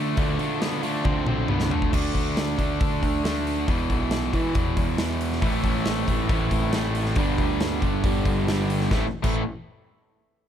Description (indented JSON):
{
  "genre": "classic rock",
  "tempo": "137 BPM",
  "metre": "4/4",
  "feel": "straight",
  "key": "A minor",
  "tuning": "A4 = 439 Hz",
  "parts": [
    { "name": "crunchy overdriven guitar", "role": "riff", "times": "0.0-1.9, 5.4-9.4 s", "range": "G2 to F4", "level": "-29 LUFS", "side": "equal", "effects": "none" },
    { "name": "distorted electric guitar", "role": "riff", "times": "0.0-9.4 s", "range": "E2 to D4", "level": "-29 LUFS", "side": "right 12 dB", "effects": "distortion" },
    { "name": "tight distorted guitar", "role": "riff", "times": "0.0-9.4 s", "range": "E2 to D4", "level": "-30 LUFS", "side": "left 12 dB", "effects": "distortion" },
    { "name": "fuzz picked electric bass", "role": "bass", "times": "0.0-9.4 s", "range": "G1 to E3", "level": "-28 LUFS", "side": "equal", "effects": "overdrive" },
    { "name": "big rock drum kit", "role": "drums", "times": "0.2-9.3 s", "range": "crash cymbal, hi-hat, kick drum, snare drum, toms", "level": "-26 LUFS", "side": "equal", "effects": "none" }
  ],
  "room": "studio ambience",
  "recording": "none",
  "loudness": "-22 LUFS",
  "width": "side -9 dB against mid",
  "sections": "0.0-1.9 A section; 1.9-8.9 B section; 8.9-10.5 C section",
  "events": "drum fill 1.1-1.9",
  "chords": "0.0 Dm; 1.9 D5; 3.7 E5; 5.4 Am; 7.2 G; 8.9 Am"
}